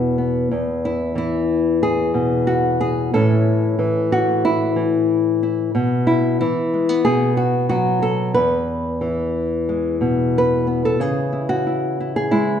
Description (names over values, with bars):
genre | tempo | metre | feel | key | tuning
folk, solo fingerstyle acoustic guitar | 91 BPM | 4/4 | straight | E major | A4 = 440 Hz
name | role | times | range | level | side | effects
nylon-string guitar | solo | 0.0-12.6 s | E2 to B4 | -17 LUFS | left 1 dB | none
room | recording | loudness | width
wet recital hall reverb, RT60 1.6 s | recorded in a church or concert hall, nothing above 10.8 kHz | -17 LUFS | side -8 dB against mid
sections
0.5-11.0 A section; 11.0-12.6 B section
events
none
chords
0.0 E5; 3.1 A; 5.7 Bsus4; 7.1 B5; 8.4 E; 11.0 C#m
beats
| 0.49 1.15 1.81 2.47 | 3.13 3.79 4.44 5.09 | 5.75 6.40 7.05 7.71 | 8.36 9.02 9.68 10.34 | 11.00 11.66 12.32